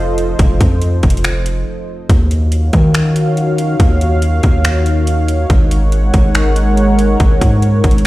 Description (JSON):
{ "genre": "hip hop, atmospheric cloud-rap", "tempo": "141 BPM", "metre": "4/4", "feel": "half-time", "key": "unclear", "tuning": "A4 = 440 Hz", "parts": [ { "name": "dark analog pad", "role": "sustained chords", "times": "0.0-8.1 s", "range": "Eb3 to Gb5", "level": "-17 LUFS", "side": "equal", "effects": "chorus" }, { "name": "long sustained 808-style bass", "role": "bass", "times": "0.0-8.1 s", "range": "F1 to Eb3", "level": "-13 LUFS", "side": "equal", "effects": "none" }, { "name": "trap drum kit", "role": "drums", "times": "0.2-8.1 s", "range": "finger snaps, hi-hat, kick drum", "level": "-13 LUFS", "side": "equal", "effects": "none" } ], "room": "little or no reverb", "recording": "played on a big sound system in a bare room, stone room reverb", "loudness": "-10 LUFS", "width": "side -17 dB against mid", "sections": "0.0-8.1 A section", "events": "break 1.7-2.1", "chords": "0.0 F7; 2.1 Ebm7; 5.5 Ab7sus4", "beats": "| 0.39 0.82 1.24 1.67 | 2.10 2.52 2.95 3.37 | 3.80 4.22 4.65 5.07 | 5.50 5.92 6.35 6.78 | 7.20 7.63 8.05" }